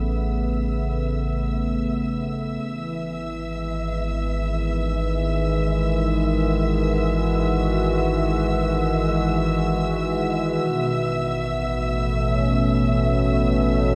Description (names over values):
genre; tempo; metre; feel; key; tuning
ambient; free time; none; none; A lydian; A4 = 440 Hz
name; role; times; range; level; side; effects
warm analog pad; sustained chords; 0.0-13.9 s; B2 to G#4; -25 LUFS; equal; chorus
warm sub bass; bass; 0.0-13.9 s; G#1 to A1; -28 LUFS; equal; none
warm studio violin section; texture; 0.0-13.9 s; E5 to E6; -32 LUFS; equal; none
room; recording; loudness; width
wet lush hall reverb, RT60 2.9 s; dreamy mix soaked in reverb; -23 LUFS; mono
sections
0.0-13.9 A section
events
fade-in on analog synth pad 0.0-13.9; fade-in on violin section 0.0-13.9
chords
0.0 Amaj9; 2.6 Emaj9/G#; 10.6 Aadd9